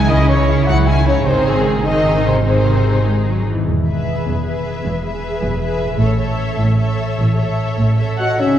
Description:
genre	cinematic, heroic adventure film score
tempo	101 BPM (dotted quarters)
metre	6/8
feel	straight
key	E major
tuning	A4 = 441 Hz
part	warm symphonic violin section	melody	0.0-8.6 s	G#4 to G#5	-24 LUFS	left 2 dB	none
part	rich symphonic violin section	second line	0.0-8.6 s	C#4 to C#5	-26 LUFS	left 2 dB	none
part	rich symphonic viola section	accompaniment	0.0-8.4 s	D#3 to A4	-24 LUFS	equal	none
part	concert harp	arpeggios	0.0-8.6 s	E2 to G#5	-23 LUFS	left 1 dB	none
part	mellow trumpet section	stabs	0.0-3.1, 8.2-8.6 s	G#4 to G#5	-21 LUFS	equal	none
part	rich symphonic double bass section	bass	0.0-8.6 s	E1 to C#2	-18 LUFS	right 1 dB	none
part	warm symphonic cello section	bass	0.0-8.6 s	E2 to G#3	-22 LUFS	right 1 dB	none
part	mellow hollow concert flute	second line	8.2-8.6 s	C#5 to D#5	-21 LUFS	left 2 dB	none
part	mellow oboe	second line	8.2-8.6 s	E5 to F#5	-22 LUFS	right 2 dB	none
part	mellow French horn section	sustained chords	8.2-8.6 s	C#4 to F#4	-16 LUFS	left 2 dB	none
room	wet scoring stage reverb, RT60 1.7 s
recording	heard from further back in the room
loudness	-14 LUFS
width	side -10 dB against mid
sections	0.0-3.7 A section; 3.7-8.4 B section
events	none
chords	0.0 C#madd9; 1.3 G#; 3.7 E; 6.0 A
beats	| 0.10 0.68 | 1.26 1.86 | 2.46 3.07 | 3.67 4.26 | 4.85 5.43 | 6.00 6.59 | 7.19 7.79 | 8.39

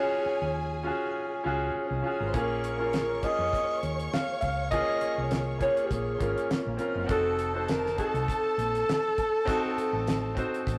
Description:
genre	lush 1970s-style soul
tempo	101 BPM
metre	4/4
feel	swing 54% on 16ths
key	unclear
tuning	A4 = 439 Hz
part	breathy alto saxophone	melody	0.0-10.8 s	G4 to F5	-32 LUFS	equal	none
part	dark studio string section	second line	0.0-10.8 s	Bb3 to Db6	-40 LUFS	equal	none
part	clear grand piano	accompaniment	0.0-10.8 s	Bb3 to C5	-34 LUFS	equal	none
part	hollow-body short-scale fingered electric bass	bass	0.3-10.8 s	F1 to F2	-37 LUFS	equal	none
part	damped 70s drum kit	drums	2.3-10.8 s	hi-hat, kick drum, snare drum	-35 LUFS	equal	none
room	moderate stone room reverb, RT60 1.3 s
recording	rough rehearsal-room recording, warm saturation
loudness	-29 LUFS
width	mono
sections	0.0-10.8 A section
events	none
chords	0.0 Ebm11; 2.3 Bbm7; 7.1 F7b9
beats	0.55 1.14 1.74 | 2.34 2.93 3.53 4.12 | 4.72 5.31 5.91 6.50 | 7.10 7.70 8.29 8.88 | 9.48 10.07 10.67

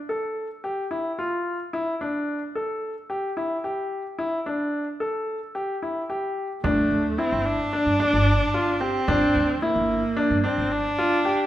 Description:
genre	contemporary instrumental, chamber music in an uneven meter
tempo	220 BPM (eighths)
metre	9/8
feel	straight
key	unclear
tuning	A4 = 439 Hz
part	bright concert grand piano	arpeggios	0.1-11.4 s	D4 to A4	-24 LUFS	left 1 dB	none
part	rich viola	second line	6.6-11.5 s	A3 to D4	-25 LUFS	right 1 dB	none
part	upright bass	bass	6.6-10.8 s	G1 to G2	-27 LUFS	right 1 dB	none
part	frame drum	percussion	6.6-9.3 s	none	-32 LUFS	right 2 dB	none
room	moderate recital hall reverb, RT60 1.5 s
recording	recorded in a church or concert hall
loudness	-22 LUFS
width	side -13 dB against mid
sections	0.0-6.6 A section; 6.6-11.5 B section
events	none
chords	0.0 G5; 1.7 Dsus24; 6.6 G5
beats	0.09 0.37 0.64 0.91 1.19 1.46 | 1.73 2.00 2.28 2.55 2.82 3.10 3.37 3.64 3.91 | 4.19 4.46 4.73 5.00 5.28 5.55 5.82 6.09 6.37 | 6.64 6.91 7.18 7.45 7.72 8.00 8.27 8.54 8.81 | 9.08 9.35 9.62 9.90 10.17 10.44 10.71 10.98 11.25

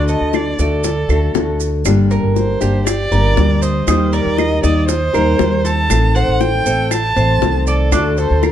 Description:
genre	latin, Cuban son and guajira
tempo	119 BPM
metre	4/4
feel	straight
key	G harmonic minor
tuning	A4 = 442 Hz
part	warm violin	melody	0.0-8.5 s	A4 to A5	-20 LUFS	right 2 dB	plate reverb
part	nylon-string guitar	accompaniment	0.0-8.5 s	D3 to G4	-19 LUFS	left 4 dB	none
part	Cuban tres	arpeggios	0.0-8.5 s	D4 to Eb5	-21 LUFS	right 3 dB	none
part	upright bass	bass	0.0-8.5 s	G1 to Eb2	-17 LUFS	right 1 dB	none
part	maracas	percussion	0.1-8.5 s	none	-28 LUFS	right 10 dB	none
part	bongos	percussion	0.3-8.5 s	none	-22 LUFS	left 6 dB	none
part	claves	percussion	0.3-8.5 s	none	-28 LUFS	right 9 dB	none
room	moderate large studio reverb, RT60 0.8 s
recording	dark, warm production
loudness	-13 LUFS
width	side -10 dB against mid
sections	0.0-8.5 A section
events	none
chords	0.0 D; 1.9 Gm; 3.9 Eb; 5.9 Adim; 7.9 D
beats	0.34 0.84 1.35 | 1.85 2.36 2.86 3.37 | 3.88 4.38 4.89 5.39 | 5.90 6.41 6.91 7.42 | 7.92 8.43

